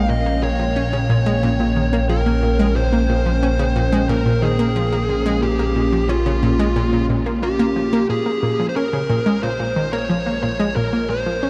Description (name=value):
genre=ambient, sequencer-driven space music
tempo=90 BPM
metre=4/4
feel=straight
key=Bb dorian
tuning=A4 = 437 Hz
part: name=fuzz lead guitar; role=melody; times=0.0-11.5 s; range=F4 to Eb5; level=-25 LUFS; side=equal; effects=distortion, shimmer reverb, analog delay
part: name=sweeping resonant pad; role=sustained chords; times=0.0-11.5 s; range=Bb3 to G5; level=-27 LUFS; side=equal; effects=chorus, shimmer reverb
part: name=analog pluck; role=riff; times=0.0-11.5 s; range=Bb2 to Db4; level=-23 LUFS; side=equal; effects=chorus, shimmer reverb, analog delay
part: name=fat analog bass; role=bass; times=0.0-11.5 s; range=Bb1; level=-24 LUFS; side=equal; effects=none
room=wet huge ambient reverb, RT60 7.2 s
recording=dark, warm production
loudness=-19 LUFS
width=mono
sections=0.0-8.1 A section; 8.1-11.5 B section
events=none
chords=0.0 Bbm7